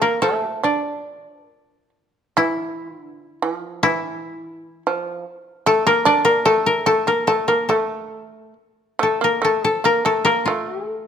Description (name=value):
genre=japanese traditional, Japanese chamber music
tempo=68-76 BPM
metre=2/4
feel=rubato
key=unclear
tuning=A4 = 439 Hz
part: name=koto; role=melody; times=0.0-11.1 s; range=E4 to D5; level=-18 LUFS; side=left 4 dB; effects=none
part: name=shamisen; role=second line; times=0.0-11.1 s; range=E3 to D4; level=-22 LUFS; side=right 5 dB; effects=none
room=moderate recital hall reverb, RT60 1.5 s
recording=close, detailed microphones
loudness=-17 LUFS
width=side -8 dB against mid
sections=0.0-2.4 A section; 2.4-11.1 B section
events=none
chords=none